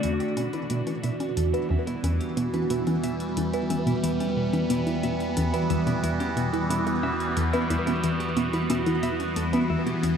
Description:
ambient, sequencer-driven space music; 90 BPM; 4/4; straight; E minor; A4 = 438 Hz
evolving wavetable pad; sustained chords; 0.0-10.2 s; E3 to F#4; -26 LUFS; right 1 dB; phaser, built-in reverb
clean electric guitar; arpeggios; 0.0-10.1 s; E3 to E5; -38 LUFS; moving between left 6 dB and equal; auto-pan, tape echo
tight sequenced synth; riff; 0.0-10.2 s; E2 to B3; -27 LUFS; equal; chorus, phaser, tape echo
round analog bass; bass; 0.0-10.2 s; E2; -40 LUFS; equal
electronic hi-hat and congas; percussion; 0.0-10.2 s; -37 LUFS; left 3 dB; tape echo
wet huge ambient reverb, RT60 7.8 s; -23 LUFS; side -7 dB against mid
0.0-10.2 A section
fade-in on clean electric guitar 0.0-10.2; fade-in on analog synth bass 0.0-10.2
0.0 Em7

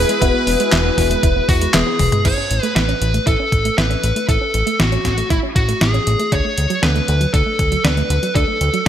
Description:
synthwave; 118 BPM; 4/4; straight; A major; A4 = 440 Hz
fuzz lead guitar; melody; 0.0-8.9 s; E4 to C#5; -19 LUFS; equal; distortion, ping-pong delay
string machine, violins; second line; 0.0-1.7 s; B4; -24 LUFS; left 1 dB; ensemble chorus, ping-pong delay
chorused pulse-width pad; sustained chords; 0.0-2.2 s; E4 to B4; -28 LUFS; equal; sidechain pumping
mellow FM electric piano; stabs; 0.0-2.2 s; B3 to B4; -24 LUFS; left 3 dB; chorus, ping-pong delay
fat analog bass; bass; 0.0-8.9 s; E1 to E2; -19 LUFS; equal; tube saturation, sidechain pumping
soft round pluck; arpeggios; 0.1-8.8 s; F#3 to E4; -25 LUFS; right 4 dB; chorus, ping-pong delay
detuned 8-bit digital drum machine; drums; 0.1-8.8 s; crash cymbal, handclaps, hi-hat, snare drum, toms; -20 LUFS; equal; overdrive
electronic kick drum; drums; 0.2-8.5 s; -19 LUFS; equal; overdrive
moderate lush hall reverb, RT60 1.6 s, digital ambience; bright 1980s-style digital production; -14 LUFS; side -10 dB against mid
0.0-2.3 A section; 2.3-8.9 B section
drum fill 2.0
0.0 E; 2.3 A; 6.3 D

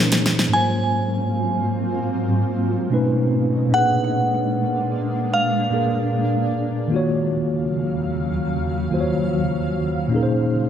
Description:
contemporary R&B; 75 BPM; 4/4; straight; Bb minor; A4 = 442 Hz
glassy synth bell; melody; 0.0-6.5 s; F5 to Ab5; -23 LUFS; right 1 dB; chorus, phaser, tape echo
mellow tine electric piano; accompaniment; 0.0-10.7 s; Ab2 to Db5; -21 LUFS; equal; fast stereo tremolo
granular cloud pad; sustained chords; 0.1-10.7 s; Eb2 to F5; -24 LUFS; equal; built-in reverb
smooth R&B drum kit; drums; 0.1-0.6 s; hi-hat, snare drum; -19 LUFS; equal
light reverb; -18 LUFS; side -9 dB against mid
0.5-10.7 A section
drum fill 0.0-0.5
0.0 Bbm11; 0.5 Ab13; 2.9 B9; 3.7 Bb7b9; 6.9 Ebm9; 10.1 Bbm11

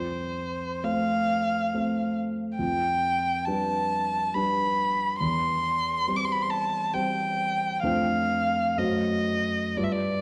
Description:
classical, romantic duo for violin and grand piano; 57-71 BPM; 3/4; rubato; A4 = 440 Hz
warm violin; melody; 0.0-10.2 s; C5 to D6; -28 LUFS; equal
warm concert grand piano; accompaniment; 0.0-10.2 s; E2 to C5; -31 LUFS; equal
wet recital hall reverb, RT60 1.6 s; dark, warm production; -27 LUFS; mono
0.0-10.2 A section
0.0 F; 2.6 G7/F; 5.2 C/E; 7.8 Dm7/F; 8.8 F#dim7

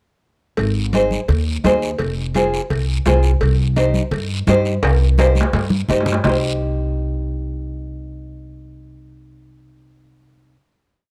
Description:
latin, cumbia; 169 BPM; 4/4; straight; C minor; A4 = 437 Hz
upright bass; bass; 0.6-10.5 s; F1 to G2; -21 LUFS; equal
cowbell and timbales; percussion; 0.6-6.3 s; -26 LUFS; equal
guiro; percussion; 0.6-6.3 s; -35 LUFS; equal
nylon-string guitar; accompaniment; 0.9-10.6 s; Eb4 to C5; -22 LUFS; equal
congas; percussion; 0.9-6.3 s; -25 LUFS; equal
studio ambience; dry, close 1970s-style studio recording; -18 LUFS; mono
0.6-6.3 groove; 6.3-9.1 final chord
drum fill 4.8-6.3
0.6 Ab; 2.0 Fm; 3.4 Cm

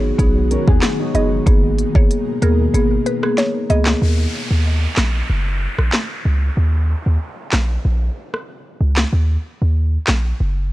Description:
dancehall; 94 BPM; 4/4; straight; Eb minor; A4 = 440 Hz
mallet-like synth pluck; melody; 0.0-3.8 s; Bb4 to D#5; -26 LUFS; right 1 dB; chorus, phaser, tape echo
marimba with medium mallets; accompaniment; 0.0-3.9 s; Bb3 to G#4; -20 LUFS; left 1 dB; sidechain pumping
ethereal airy pad; sustained chords; 0.0-4.0 s; Cb3 to Bb4; -27 LUFS; equal; ensemble chorus, built-in reverb, tremolo, sidechain pumping
warm 808-style bass; bass; 0.0-10.7 s; F#1 to D#2; -17 LUFS; equal
afro-pop drum kit; drums; 0.2-10.2 s; handclaps, hi-hat, kick drum, rim click, snare drum; -17 LUFS; equal; vintage 12-bit sampler grit
nylon-string guitar; arpeggios; 0.5-1.4 s; F#3 to Bb4; -24 LUFS; left 4 dB
downlifter; sound effects; 4.0-9.1 s; -29 LUFS; right 1 dB
little or no reverb; dry, gritty hardware recording, transformer saturation; -15 LUFS; side -17 dB against mid
0.0-4.0 A section; 4.0-10.7 B section
kick muted 2.7-4.0; break 4.0-10.7
0.0 B6; 1.5 Abmadd9; 4.0 Eb5; 5.3 Gb; 6.6 Eb5; 7.8 Bbm; 9.1 Eb5

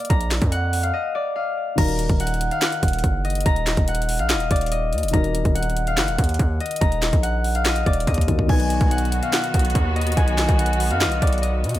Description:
hip hop, trap; 143 BPM; 4/4; half-time; Eb harmonic minor; A4 = 440 Hz
Celtic harp; melody; 0.0-11.8 s; D5 to Bb5; -24 LUFS; left 1 dB; ping-pong delay
dark concert grand piano; accompaniment; 0.0-11.8 s; B2 to D5; -31 LUFS; left 4 dB
trap drum kit; drums; 0.0-11.8 s; crash cymbal, handclaps, hi-hat, kick drum, snare drum; -22 LUFS; equal
distorted 808-style bass; bass; 0.1-11.8 s; Eb1 to B2; -22 LUFS; equal; distortion
clear symphonic string section; sustained chords; 8.5-11.8 s; D#3 to F#4; -29 LUFS; equal
studio reverb; -18 LUFS; side -14 dB against mid
0.0-1.8 A section; 1.8-11.8 B section
break 0.9-1.8; drum fill 8.1-8.5
0.0 Bb; 1.8 Ebm; 8.5 B

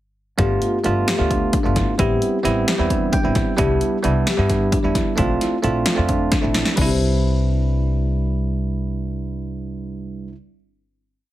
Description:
progressive instrumental, band music in an uneven meter; 263 BPM (eighths); 7/8; straight; C major; A4 = 440 Hz
bell-like tine electric piano; accompaniment; 0.4-10.3 s; G3 to G5; -22 LUFS; right 4 dB; plate reverb
marimba with soft mallets; arpeggios; 0.4-10.4 s; C4 to C5; -24 LUFS; left 4 dB; plate reverb
upright bass; bass; 0.4-10.3 s; G1 to G2; -22 LUFS; equal
punchy analog drum machine; drums; 0.4-6.9 s; crash cymbal, hi-hat, kick drum, snare drum; -22 LUFS; equal
moderate studio reverb, RT60 0.6 s; heavily compressed radio sound; -17 LUFS; side -14 dB against mid
0.4-6.8 groove; 6.8-10.0 final chord
tine electric piano fill 2.9-3.6; drum fill 6.3-6.8
0.4 G7; 2.0 Am7; 3.6 Cmaj7; 5.2 Bbmaj7; 6.8 Cmaj7

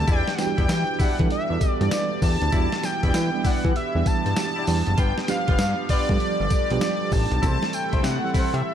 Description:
R&B, new jack swing; 98 BPM; 4/4; swing 64% on 16ths; E minor; A4 = 445 Hz
wide unison lead; melody; 0.0-8.7 s; D5 to A5; -27 LUFS; left 1 dB; slapback echo
FM electric piano with tremolo; accompaniment; 0.0-8.7 s; E3 to A4; -29 LUFS; right 7 dB; slapback echo
chorused pulse-width pad; sustained chords; 0.0-8.7 s; E3 to A4; -32 LUFS; right 1 dB
fat analog bass; bass; 0.0-8.6 s; F#1 to E3; -24 LUFS; left 1 dB
mellow horn section; stabs; 0.1-8.5 s; B3 to D5; -33 LUFS; left 4 dB; slapback echo
boom bap sampler-style drum kit; drums; 0.1-8.6 s; hi-hat, kick drum, snare drum, tambourine; -24 LUFS; left 1 dB
light reverb, digital ambience; -20 LUFS; side -9 dB against mid
0.0-8.7 A section
0.1 Em7; 5.0 G7; 7.4 C6

